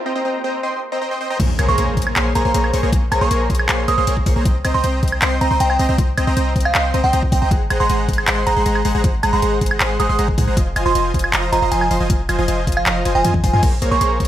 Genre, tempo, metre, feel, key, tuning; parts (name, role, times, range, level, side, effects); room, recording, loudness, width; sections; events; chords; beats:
future bass; 157 BPM; 4/4; half-time; Bb minor; A4 = 440 Hz
supersaw stab; riff; 0.1-14.3 s; F3 to Db6; -21 LUFS; equal; cassette tape, sidechain pumping
warm 808-style bass; bass; 1.4-14.3 s; F1 to Ab2; -20 LUFS; equal; tube saturation, sidechain pumping
electronic kick drum; drums; 1.4-14.3 s; -18 LUFS; equal; overdrive, studio reverb
trap drum kit; drums; 1.4-14.3 s; crash cymbal, handclaps, hi-hat, toms, woodblock; -21 LUFS; equal; studio reverb
impact; sound effects; 1.4-2.9 s; -28 LUFS; equal
glassy synth bell; melody; 1.7-14.1 s; F5 to Eb6; -22 LUFS; right 2 dB; chorus, sidechain pumping, tape echo
shimmering ambient pad; sustained chords; 13.6-14.3 s; C4 to Db4; -40 LUFS; left 1 dB
light reverb; high-pass filter; -15 LUFS; side -12 dB against mid
0.0-1.4 A section; 1.4-13.6 B section
break 0.0-1.4; build-up 0.0-1.4; filter sweep on supersaw synth 0.0-1.4; filter sweep 0.0-1.4; drop 1.4-13.6; impact 1.4-2.9; drum fill 13.2-13.6
0.0 Cm7; 1.4 Bbm9; 4.5 Cm7; 7.5 Ab9; 10.6 Fm7; 13.6 Bbm9
0.25 0.63 1.02 | 1.40 1.78 2.16 2.54 | 2.93 3.31 3.69 4.07 | 4.46 4.84 5.22 5.60 | 5.99 6.37 6.75 7.13 | 7.51 7.89 8.28 8.66 | 9.04 9.42 9.81 10.19 | 10.57 10.95 11.34 11.72 | 12.10 12.48 12.86 13.25 | 13.63 14.01